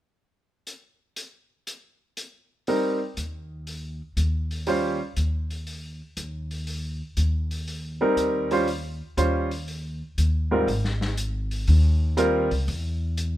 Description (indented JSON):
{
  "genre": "jazz, small-group swing and bop",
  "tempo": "120 BPM",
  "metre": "4/4",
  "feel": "swing 68% on 8ths",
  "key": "Ab major",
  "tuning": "A4 = 440 Hz",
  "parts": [
    { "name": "vintage drum kit", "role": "drums", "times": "0.7-13.3 s", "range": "hi-hat, snare drum", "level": "-36 LUFS", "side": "left 2 dB", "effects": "none" },
    { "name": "clear upright piano", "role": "accompaniment", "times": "2.7-5.0, 8.0-12.5 s", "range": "Ab2 to C5", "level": "-22 LUFS", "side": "right 1 dB", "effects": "none" },
    { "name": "upright bass", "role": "bass", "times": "3.2-13.4 s", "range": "Ab1 to E2", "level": "-25 LUFS", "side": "equal", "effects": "none" }
  ],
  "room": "light reverb",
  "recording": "none",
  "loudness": "-23 LUFS",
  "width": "side -14 dB against mid",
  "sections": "0.7-2.7 A section; 2.7-10.7 B section; 10.7-13.4 C section",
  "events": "none",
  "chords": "0.7 N.C.; 2.7 Cm7; 4.7 Eb13; 6.7 Cm7; 8.7 Eb13; 10.7 Abmaj13; 12.7 N.C."
}